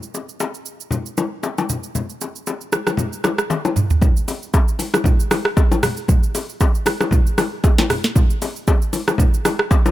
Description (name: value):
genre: amapiano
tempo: 116 BPM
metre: 4/4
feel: swing 55% on 16ths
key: none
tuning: none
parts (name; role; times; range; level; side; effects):
- afro-pop drum kit; drums; 0.0-9.9 s; hi-hat, kick drum, rim click, shaker, snare drum, toms; -17 LUFS; right 1 dB; none
- bongos and congas; percussion; 0.1-9.9 s; none; -22 LUFS; left 4 dB; none
room: little or no reverb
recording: none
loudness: -16 LUFS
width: side -15 dB against mid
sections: 0.0-4.0 A section; 4.0-9.9 B section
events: drum fill 3.5-4.0; drop 4.0-9.9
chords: none